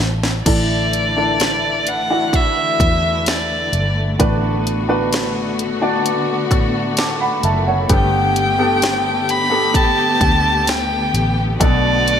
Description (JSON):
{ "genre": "pop ballad", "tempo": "65 BPM", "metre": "4/4", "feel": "straight", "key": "unclear", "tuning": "A4 = 440 Hz", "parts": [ { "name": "clear upright piano", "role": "accompaniment", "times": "0.0-12.2 s", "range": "G2 to D6", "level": "-21 LUFS", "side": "right 1 dB", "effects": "lush chorus" }, { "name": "vintage muted fingered electric bass", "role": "bass", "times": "0.0-12.2 s", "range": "F#1 to A2", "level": "-22 LUFS", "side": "equal", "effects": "none" }, { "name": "house drum kit", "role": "drums", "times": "0.2-12.2 s", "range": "crash cymbal, hi-hat, kick drum, snare drum", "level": "-20 LUFS", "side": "equal", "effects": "none" }, { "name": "warm violin", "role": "melody", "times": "0.5-12.2 s", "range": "D5 to B5", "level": "-18 LUFS", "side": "left 1 dB", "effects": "none" }, { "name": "dark studio string section", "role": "sustained chords", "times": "0.5-12.2 s", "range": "D3 to G4", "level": "-23 LUFS", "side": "left 3 dB", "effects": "none" } ], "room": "moderate plate reverb, RT60 2.3 s", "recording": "bright 1980s-style digital production", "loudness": "-14 LUFS", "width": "side -8 dB against mid", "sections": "0.5-12.2 A section", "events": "drum fill 0.0-0.5", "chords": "0.5 Asus4; 4.2 D6/A; 7.9 Gadd9; 11.6 Bm7" }